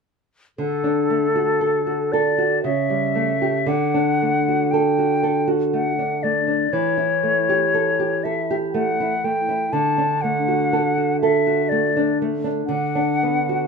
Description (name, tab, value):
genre	romantic duo for flute and classical guitar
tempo	60 BPM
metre	3/4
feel	rubato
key	D major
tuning	A4 = 440 Hz
part	silver concert flute	melody	0.6-13.7 s	A4 to A5	-21 LUFS	left 4 dB	none
part	nylon-string guitar	accompaniment	0.6-13.7 s	C#3 to A4	-20 LUFS	right 2 dB	none
room	moderate studio reverb, RT60 0.5 s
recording	minimal, uncompressed stereo recording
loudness	-18 LUFS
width	side -5 dB against mid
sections	0.6-13.7 A section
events	none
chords	0.6 D; 2.6 A7/C#; 3.7 D; 6.7 A7/E; 9.7 D; 12.7 Bm/D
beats	| 0.59 1.61 2.64 | 3.68 4.72 5.72 | 6.72 7.73 8.74 | 9.73 10.72 11.70 | 12.68